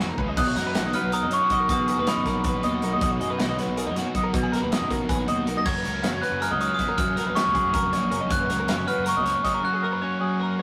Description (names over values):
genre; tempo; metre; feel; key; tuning
math rock and midwest emo; 317 BPM (eighths); 7/8; straight; unclear; A4 = 441 Hz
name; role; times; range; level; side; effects
twelve-string electric guitar; accompaniment; 0.0-10.6 s; F#2 to B4; -32 LUFS; equal; none
twelve-string electric guitar; arpeggios; 0.0-10.6 s; F#4 to F#5; -32 LUFS; equal; none
overdriven electric guitar; riff; 0.0-10.6 s; F#2 to B4; -38 LUFS; equal; none
fuzz picked electric bass; bass; 0.0-9.3 s; E#1 to B2; -33 LUFS; equal; overdrive
modern studio drum kit; drums; 0.0-9.5 s; crash cymbal, hi-hat, kick drum, snare drum; -31 LUFS; equal; none
glockenspiel with hard plastic mallets; melody; 0.4-2.8, 5.6-10.6 s; B5 to A#6; -28 LUFS; equal; none
room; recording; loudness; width
moderate stone room reverb, RT60 1.2 s; rough rehearsal-room recording, warm saturation; -24 LUFS; mono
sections
0.4-10.6 A section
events
drum fill 0.0-0.4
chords
0.4 Bmaj7; 5.7 F#maj7